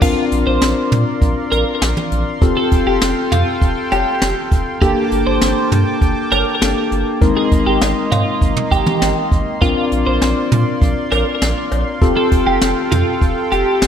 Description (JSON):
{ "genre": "synth-pop", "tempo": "100 BPM", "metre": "4/4", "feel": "straight", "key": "unclear", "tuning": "A4 = 440 Hz", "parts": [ { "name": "twelve-string electric guitar", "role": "second line", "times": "0.0-13.9 s", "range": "F4 to C5", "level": "-20 LUFS", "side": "right 2 dB", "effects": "analog chorus, ping-pong delay" }, { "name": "tine electric piano", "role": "accompaniment", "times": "0.0-13.9 s", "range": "Ab3 to Bb4", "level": "-19 LUFS", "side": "left 4 dB", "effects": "none" }, { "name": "brassy analog pad", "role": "sustained chords", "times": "0.0-13.9 s", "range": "Bb3 to D6", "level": "-23 LUFS", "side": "right 1 dB", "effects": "chorus" }, { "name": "round analog bass", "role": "bass", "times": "0.0-13.9 s", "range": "F1 to Bb2", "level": "-20 LUFS", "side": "right 1 dB", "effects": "none" }, { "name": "jazz brush drum kit", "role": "drums", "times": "0.0-13.9 s", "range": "cowbell, crash cymbal, hi-hat, kick drum, snare drum, toms", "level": "-18 LUFS", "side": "right 1 dB", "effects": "none" } ], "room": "moderate scoring stage reverb, RT60 1.7 s", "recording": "none", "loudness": "-13 LUFS", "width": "side -8 dB against mid", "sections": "0.0-13.9 A section", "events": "none", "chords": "0.0 Bbadd9; 2.4 Fadd9; 4.8 Gmadd9; 7.2 Abadd9; 9.6 Bbadd9; 12.0 Fadd9", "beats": "| 0.02 0.62 1.22 1.82 | 2.42 3.02 3.62 4.22 | 4.82 5.42 6.02 6.62 | 7.22 7.82 8.42 9.02 | 9.62 10.22 10.82 11.42 | 12.02 12.62 13.22 13.82" }